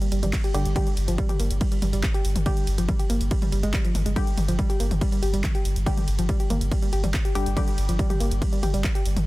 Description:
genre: driving peak-time techno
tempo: 141 BPM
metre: 4/4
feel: straight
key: unclear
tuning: A4 = 439 Hz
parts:
  - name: woody wave-folded pluck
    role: riff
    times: 0.0-9.0 s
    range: F3 to G4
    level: -30 LUFS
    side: right 1 dB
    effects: chorus, overdrive, sidechain pumping, dub echo
  - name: punchy analog drum machine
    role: drums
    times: 0.0-9.2 s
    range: handclaps, hi-hat, ride cymbal, toms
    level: -32 LUFS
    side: left 1 dB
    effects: overdrive
  - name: warm sub bass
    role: bass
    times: 0.1-9.3 s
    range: G1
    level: -25 LUFS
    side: equal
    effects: sidechain pumping, low-pass filter
  - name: electronic kick drum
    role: drums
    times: 0.3-8.9 s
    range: none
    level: -24 LUFS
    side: equal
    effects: overdrive
  - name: filtered dub chord stab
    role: stabs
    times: 0.5-7.7 s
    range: D3 to G4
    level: -34 LUFS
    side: left 1 dB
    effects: chorus, sidechain pumping, dub echo
room: digital ambience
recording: dense, heavily limited modern master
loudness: -21 LUFS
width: side -19 dB against mid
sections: 0.0-9.3 A section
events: none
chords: 0.0 G5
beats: 0.33 | 0.76 1.18 1.61 2.03 | 2.46 2.88 3.31 3.74 | 4.16 4.59 5.01 5.44 | 5.86 6.29 6.71 7.14 | 7.57 7.99 8.42 8.84

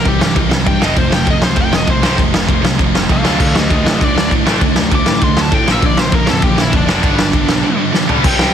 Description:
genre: punk rock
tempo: 198 BPM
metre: 4/4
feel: straight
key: unclear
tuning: A4 = 440 Hz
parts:
  - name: smooth overdriven lead guitar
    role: melody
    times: 0.0-8.5 s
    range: D4 to D6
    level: -20 LUFS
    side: left 1 dB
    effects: ping-pong delay
  - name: cranked stack guitar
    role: riff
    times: 0.0-8.5 s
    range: F2 to D4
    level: -20 LUFS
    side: left 13 dB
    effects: overdrive
  - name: high-gain distorted guitar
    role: riff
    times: 0.0-8.5 s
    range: F2 to D4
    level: -21 LUFS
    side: left 1 dB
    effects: distortion
  - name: tight distorted guitar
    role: riff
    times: 0.0-8.5 s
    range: G2 to E4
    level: -19 LUFS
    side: right 14 dB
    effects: distortion
  - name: modern bright picked electric bass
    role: bass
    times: 0.0-8.5 s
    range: F1 to A2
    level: -20 LUFS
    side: equal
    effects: none
  - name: loose indie drum kit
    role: drums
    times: 0.1-8.5 s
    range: crash cymbal, kick drum, ride cymbal, snare drum, toms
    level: -14 LUFS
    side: equal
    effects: none
room: little or no reverb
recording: dense, heavily limited modern master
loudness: -11 LUFS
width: side -9 dB against mid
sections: 0.0-8.2 A section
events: lead electric guitar solo 0.0-8.2; drum fill 7.9-8.2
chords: 0.0 C; 0.8 F; 3.3 D5; 5.7 Bb; 7.0 G5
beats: 0.07 0.37 0.68 | 0.98 1.28 1.59 1.89 | 2.19 2.50 2.80 3.10 | 3.40 3.71 4.01 4.31 | 4.62 4.92 5.22 5.52 | 5.83 6.13 6.43 6.74 | 7.04 7.34 7.64 7.95 | 8.25

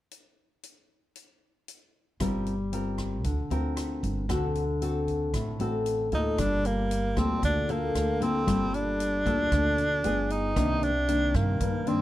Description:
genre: bossa nova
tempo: 115 BPM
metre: 4/4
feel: straight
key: G minor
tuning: A4 = 439 Hz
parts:
  - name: swinging big-band drum kit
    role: drums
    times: 0.1-12.0 s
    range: hi-hat, kick drum, rim click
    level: -36 LUFS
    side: right 1 dB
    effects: none
  - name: nylon-string guitar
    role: accompaniment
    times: 2.2-12.0 s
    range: G2 to Bb4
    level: -29 LUFS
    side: left 2 dB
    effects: none
  - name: upright bass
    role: bass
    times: 2.2-12.0 s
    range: G1 to G2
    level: -31 LUFS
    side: right 1 dB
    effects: none
  - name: breathy tenor saxophone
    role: melody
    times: 6.1-12.0 s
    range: Bb3 to Eb4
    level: -28 LUFS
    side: right 1 dB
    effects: none
room: little or no reverb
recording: close, detailed microphones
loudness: -25 LUFS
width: side -14 dB against mid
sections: 0.1-2.2 A section; 2.2-6.4 B section; 6.4-12.0 C section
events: none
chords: 0.1 N.C.; 2.2 Gm7; 4.3 D7; 6.4 Gm9; 10.0 G7b9; 10.6 Cm9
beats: | 0.11 0.63 1.15 1.68 | 2.20 2.72 3.25 3.77 | 4.29 4.82 5.34 5.86 | 6.38 6.91 7.43 7.95 | 8.47 9.00 9.52 10.04 | 10.56 11.09 11.61

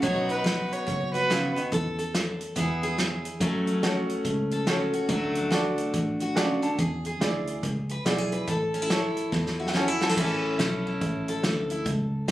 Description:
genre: honky-tonk and classic country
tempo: 142 BPM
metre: 4/4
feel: swing 62% on 8ths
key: A major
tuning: A4 = 440 Hz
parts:
  - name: clear fiddle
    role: second line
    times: 0.0-1.5 s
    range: B4 to C#5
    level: -28 LUFS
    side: right 2 dB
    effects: none
  - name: picked steel-string acoustic guitar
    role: accompaniment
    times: 0.0-12.3 s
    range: F#2 to B4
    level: -28 LUFS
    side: left 1 dB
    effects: none
  - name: fingered electric bass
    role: bass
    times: 0.0-12.3 s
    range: F#1 to F#2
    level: -30 LUFS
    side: equal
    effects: none
  - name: natural country drum kit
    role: drums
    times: 0.0-12.3 s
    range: crash cymbal, hi-hat, kick drum, snare drum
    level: -30 LUFS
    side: equal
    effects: none
  - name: clear grand piano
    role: accompaniment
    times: 3.8-10.2 s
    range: E4 to A5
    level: -30 LUFS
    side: right 1 dB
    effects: none
room: light reverb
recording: recorded on a phone in the room, club reverb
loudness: -24 LUFS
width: side -14 dB against mid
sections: 0.0-10.2 A section; 10.2-12.3 B section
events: grand piano fill 6.2-6.8, 9.3-10.2; drum fill 9.3-10.2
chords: 0.0 B; 1.7 Esus4; 2.6 E; 3.4 F#m; 5.1 D; 6.8 E7; 8.5 A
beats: | 0.03 0.45 0.88 1.30 | 1.72 2.14 2.56 2.99 | 3.41 3.83 4.25 4.67 | 5.10 5.52 5.94 6.36 | 6.79 7.21 7.63 8.05 | 8.48 8.90 9.32 9.75 | 10.17 10.59 11.02 11.44 | 11.86 12.29

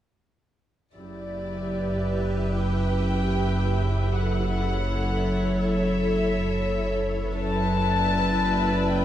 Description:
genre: cinematic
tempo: 75 BPM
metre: 4/4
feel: straight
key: unclear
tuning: A4 = 440 Hz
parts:
  - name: warm chamber violin section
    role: melody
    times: 0.9-9.0 s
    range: D5 to A5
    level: -30 LUFS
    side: left 4 dB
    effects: none
  - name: evolving wavetable pad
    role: sustained chords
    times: 1.7-9.0 s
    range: G4 to E5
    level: -31 LUFS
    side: right 1 dB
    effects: ensemble chorus, built-in reverb
  - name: dark chamber viola section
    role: accompaniment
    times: 1.0-9.0 s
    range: E4 to B4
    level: -31 LUFS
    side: left 1 dB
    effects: none
  - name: warm symphonic cello section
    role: bass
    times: 1.0-9.0 s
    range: F#2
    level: -28 LUFS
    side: right 1 dB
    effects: none
  - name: warm symphonic double bass section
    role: bass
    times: 1.0-9.0 s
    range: F#1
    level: -29 LUFS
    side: right 2 dB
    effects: none
  - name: deep rumbling drone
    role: drone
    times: 1.4-9.0 s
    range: F#1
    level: -30 LUFS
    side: equal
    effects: built-in reverb
room: wet recital hall reverb, RT60 1.4 s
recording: dark, warm production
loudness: -22 LUFS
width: side -11 dB against mid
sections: 1.0-9.0 A section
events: none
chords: 1.0 Em7/F#; 4.2 F#m7; 7.4 E7(no3)/F#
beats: | 0.95 1.75 2.55 3.35 | 4.15 4.95 5.75 6.55 | 7.35 8.15 8.95

